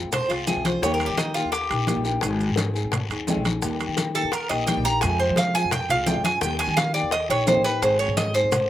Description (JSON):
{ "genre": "latin, Cuban son and guajira", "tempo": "172 BPM", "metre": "4/4", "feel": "straight", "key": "unclear", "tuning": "A4 = 443 Hz", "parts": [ { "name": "nylon-string guitar", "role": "accompaniment", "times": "0.0-8.6 s", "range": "C3 to Ab4", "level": "-28 LUFS", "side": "left 3 dB", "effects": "slapback echo" }, { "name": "upright bass", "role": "bass", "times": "0.0-8.7 s", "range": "F1 to F3", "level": "-28 LUFS", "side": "equal", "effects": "none" }, { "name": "Cuban tres", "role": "arpeggios", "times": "0.1-8.7 s", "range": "Eb4 to Bb5", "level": "-23 LUFS", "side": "right 2 dB", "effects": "slapback echo" }, { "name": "bongos", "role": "percussion", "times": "0.1-8.7 s", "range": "none", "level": "-33 LUFS", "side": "left 7 dB", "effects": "slapback echo" }, { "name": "congas", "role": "percussion", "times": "0.1-8.7 s", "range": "none", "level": "-29 LUFS", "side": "left 2 dB", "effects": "none" }, { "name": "guiro", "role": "percussion", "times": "0.1-8.7 s", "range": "none", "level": "-35 LUFS", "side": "left 7 dB", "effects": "slapback echo" }, { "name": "maracas", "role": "percussion", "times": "0.1-8.7 s", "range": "none", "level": "-35 LUFS", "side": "right 6 dB", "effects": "none" }, { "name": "timbales", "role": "percussion", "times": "0.1-8.7 s", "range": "none", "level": "-32 LUFS", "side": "right 7 dB", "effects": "slapback echo" } ], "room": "little or no reverb", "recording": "recorded outdoors, with no room sound", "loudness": "-20 LUFS", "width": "side -12 dB against mid", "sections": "0.0-8.7 A section", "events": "Cuban tres solo 0.0-8.7", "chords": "0.0 Fm; 0.8 Eb; 2.2 Ab; 3.6 Eb; 5.0 Fm; 6.4 Eb; 7.8 Ab", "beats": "0.13 0.48 | 0.83 1.18 1.53 1.88 | 2.23 2.58 2.92 3.27 | 3.62 3.97 4.32 4.67 | 5.02 5.37 5.72 6.07 | 6.42 6.77 7.12 7.47 | 7.82 8.17 8.52" }